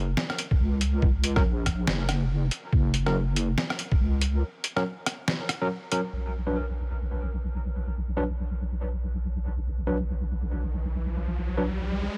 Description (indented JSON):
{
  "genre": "deep dubstep",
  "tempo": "141 BPM",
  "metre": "4/4",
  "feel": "swing 59% on 16ths, half-time",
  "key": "unclear",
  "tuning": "A4 = 436 Hz",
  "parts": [
    { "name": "deep soft wobble bass", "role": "bass", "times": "0.0-12.1 s", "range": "F#1 to C#2", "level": "-29 LUFS", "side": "equal", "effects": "chorus" },
    { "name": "trip hop sampler-style drum kit", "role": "drums", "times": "0.2-6.0 s", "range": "hi-hat, rim click, snare drum", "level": "-32 LUFS", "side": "equal", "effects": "overdrive" },
    { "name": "electronic kick drum", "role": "drums", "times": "0.5-4.0 s", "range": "none", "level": "-26 LUFS", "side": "equal", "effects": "overdrive" },
    { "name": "overdriven tine electric piano", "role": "stabs", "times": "1.4-11.6 s", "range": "F#3 to B4", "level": "-35 LUFS", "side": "equal", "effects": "dub echo" },
    { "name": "riser", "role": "sound effects", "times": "10.5-12.2 s", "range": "none", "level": "-37 LUFS", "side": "equal", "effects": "none" }
  ],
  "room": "little or no reverb",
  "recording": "none",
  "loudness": "-28 LUFS",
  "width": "mono",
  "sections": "0.0-6.1 A section; 6.1-12.2 B section",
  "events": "drop 0.0-6.1; break 4.4-6.1; riser 10.5-12.2",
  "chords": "0.0 F#; 6.1 N.C.",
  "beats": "0.17 0.60 | 1.02 1.45 1.87 2.30 | 2.73 3.15 3.58 4.00 | 4.43 4.85 5.28 5.70 | 6.13 6.55 6.98 7.41 | 7.83 8.26 8.68 9.11 | 9.53 9.96 10.38 10.81 | 11.23 11.66 12.09"
}